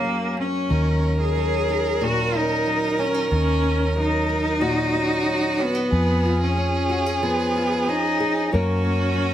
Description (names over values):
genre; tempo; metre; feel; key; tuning
acoustic folk-pop ballad; 92 BPM; 4/4; straight; unclear; A4 = 440 Hz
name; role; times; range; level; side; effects
clear cello; melody; 0.0-9.3 s; A#3 to G#4; -23 LUFS; equal; none
clear violin; second line; 0.0-9.3 s; F#4 to A#4; -27 LUFS; right 3 dB; none
nylon-string guitar; accompaniment; 0.0-9.3 s; F#2 to A#4; -27 LUFS; left 2 dB; none
vintage muted fingered electric bass; bass; 0.7-9.3 s; D#2 to F#2; -24 LUFS; equal; none
room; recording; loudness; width
light reverb; close, detailed microphones; -19 LUFS; side -11 dB against mid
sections
0.0-9.3 A section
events
none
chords
0.0 F#add9; 0.7 D#m7; 5.9 C#7/E#; 8.5 F#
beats
0.04 | 0.70 1.35 2.00 2.66 | 3.31 3.96 4.61 5.26 | 5.92 6.57 7.22 7.87 | 8.53 9.18